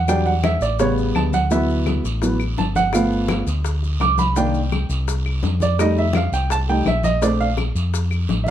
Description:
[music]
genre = Afro-Cuban jazz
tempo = 168 BPM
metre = 4/4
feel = straight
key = unclear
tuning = A4 = 440 Hz
[part]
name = warm baby grand piano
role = accompaniment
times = 0.0-8.5 s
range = C#3 to D6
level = -19 LUFS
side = right 2 dB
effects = none
[part]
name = fingered electric bass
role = bass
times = 0.0-8.5 s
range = G1 to F2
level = -21 LUFS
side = equal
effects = none
[part]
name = bongos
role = percussion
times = 0.1-8.5 s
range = none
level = -30 LUFS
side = left 7 dB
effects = none
[part]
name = claves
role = percussion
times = 0.1-8.3 s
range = none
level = -35 LUFS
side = left 7 dB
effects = none
[part]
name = congas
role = percussion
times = 0.1-8.5 s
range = none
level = -27 LUFS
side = left 3 dB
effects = none
[part]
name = guiro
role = percussion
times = 0.1-8.5 s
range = none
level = -35 LUFS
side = right 6 dB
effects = none
[part]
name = maracas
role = percussion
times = 0.1-8.5 s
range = none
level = -36 LUFS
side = left 7 dB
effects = none
[sound]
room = light reverb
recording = dark, warm production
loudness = -17 LUFS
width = side -11 dB against mid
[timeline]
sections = 0.0-8.5 A section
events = grand piano solo 0.0-8.5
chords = 0.1 Em7; 0.8 A7; 1.5 D69; 2.9 G7; 4.4 Cm7; 5.8 F7; 7.2 Bbmaj7

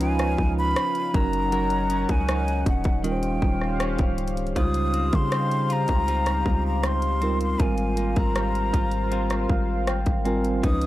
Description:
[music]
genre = contemporary R&B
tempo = 79 BPM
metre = 4/4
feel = straight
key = Ab major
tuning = A4 = 441 Hz
[part]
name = breathy hollow jazz flute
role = melody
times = 0.0-10.9 s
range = Gb5 to Eb6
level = -28 LUFS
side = equal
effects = none
[part]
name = mellow tine electric piano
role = accompaniment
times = 0.0-10.9 s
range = F3 to Ab5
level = -28 LUFS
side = right 2 dB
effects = medium stereo tremolo
[part]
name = chorused pulse-width pad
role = sustained chords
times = 0.0-10.9 s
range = Db4 to Gb5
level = -33 LUFS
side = left 2 dB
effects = sidechain pumping
[part]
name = direct-recorded clean electric guitar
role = arpeggios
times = 0.0-10.9 s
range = Ab2 to Bb4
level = -33 LUFS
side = left 3 dB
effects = none
[part]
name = long sustained 808-style bass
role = bass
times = 0.0-10.9 s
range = Db1 to Db3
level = -27 LUFS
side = equal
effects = none
[part]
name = trap drum kit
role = drums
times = 0.0-10.9 s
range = hi-hat, kick drum, rim click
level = -25 LUFS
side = equal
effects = none
[sound]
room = little or no reverb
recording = dry, gritty hardware recording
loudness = -21 LUFS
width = side -15 dB against mid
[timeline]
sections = 0.0-4.6 A section; 4.6-10.9 B section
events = tine electric piano fill 9.1-10.6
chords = 0.0 Db9; 1.1 Gb6; 3.0 Eb13; 4.6 Dbmaj9#11; 7.6 Abmaj13

